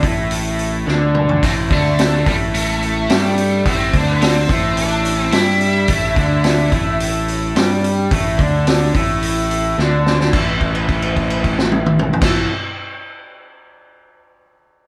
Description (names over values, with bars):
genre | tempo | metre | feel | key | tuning
blues rock power trio and southern rock | 108 BPM | 4/4 | straight | A minor | A4 = 440 Hz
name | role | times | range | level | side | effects
raw garage guitar | riff | 0.0-12.5 s | A2 to G4 | -22 LUFS | equal | overdrive, spring reverb
growling fingered electric bass | bass | 0.0-12.4 s | A1 to G2 | -22 LUFS | equal | overdrive
vintage drum kit | drums | 0.0-12.3 s | crash cymbal, hi-hat, kick drum, snare drum, splash cymbal, toms | -21 LUFS | equal | none
octave-fuzz lead guitar | melody | 1.4-7.0 s | G3 to E4 | -23 LUFS | equal | wah, distortion
room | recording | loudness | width
moderate studio reverb, RT60 0.5 s | band playing live in one room | -16 LUFS | mono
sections
0.0-10.3 A section; 10.3-12.6 B section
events
drum fill 0.9-1.4, 9.8-10.3; held note 10.3-12.2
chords
0.0 N.C.; 10.3 A5